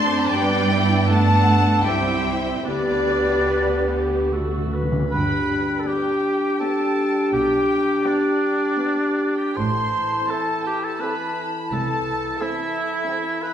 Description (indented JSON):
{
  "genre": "classical, slow romantic movement for symphony orchestra",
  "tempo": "70-89 BPM",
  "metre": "3/4",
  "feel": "rubato",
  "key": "G major",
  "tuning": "A4 = 438 Hz",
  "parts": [
    { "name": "rich chamber violin section", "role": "melody", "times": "0.0-13.5 s", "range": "D5 to C6", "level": "-27 LUFS", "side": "left 4 dB", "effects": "none" },
    { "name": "silver concert flute", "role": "second line", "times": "0.0-13.5 s", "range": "D5 to C6", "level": "-29 LUFS", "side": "left 1 dB", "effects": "none" },
    { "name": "warm oboe", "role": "second line", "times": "0.0-13.5 s", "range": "D4 to C5", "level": "-26 LUFS", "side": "right 1 dB", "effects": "none" },
    { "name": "warm symphonic violin section", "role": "second line", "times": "0.0-13.5 s", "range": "B4 to C6", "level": "-31 LUFS", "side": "equal", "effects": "none" },
    { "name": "warm studio viola section", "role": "accompaniment", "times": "0.0-13.5 s", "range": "A3 to A4", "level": "-29 LUFS", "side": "right 2 dB", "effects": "none" },
    { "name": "mellow French horn section", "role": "sustained chords", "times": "0.0-13.5 s", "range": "E3 to A4", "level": "-25 LUFS", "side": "equal", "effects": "none" },
    { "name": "rich symphonic cello section", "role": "bass", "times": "0.0-12.3 s", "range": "C2 to C4", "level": "-27 LUFS", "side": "right 3 dB", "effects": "none" },
    { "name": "warm symphonic double bass section", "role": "bass", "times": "0.0-12.3 s", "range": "G1 to G2", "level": "-25 LUFS", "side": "right 2 dB", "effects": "none" },
    { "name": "warm clarinet", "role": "second line", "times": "3.5-13.5 s", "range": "D4 to B4", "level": "-27 LUFS", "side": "left 2 dB", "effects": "none" },
    { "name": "timpani", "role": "percussion", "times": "4.3-5.1 s", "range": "D3", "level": "-27 LUFS", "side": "left 1 dB", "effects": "none" }
  ],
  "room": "wet recital hall reverb, RT60 1.5 s",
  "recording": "recorded in a church or concert hall",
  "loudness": "-18 LUFS",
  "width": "side -9 dB against mid",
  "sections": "0.0-5.1 A section; 5.1-13.5 B section",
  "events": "timpani fill 4.3-5.1",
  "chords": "0.3 G; 1.9 C; 2.7 G/D; 4.3 D; 5.1 G; 7.3 G/B; 9.6 Am; 11.7 Am/C",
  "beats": "| 0.32 1.09 1.85 | 2.66 3.50 4.32 | 5.13 5.88 6.61 | 7.34 8.06 8.79 | 9.57 10.29 11.01 | 11.72 12.41 13.09"
}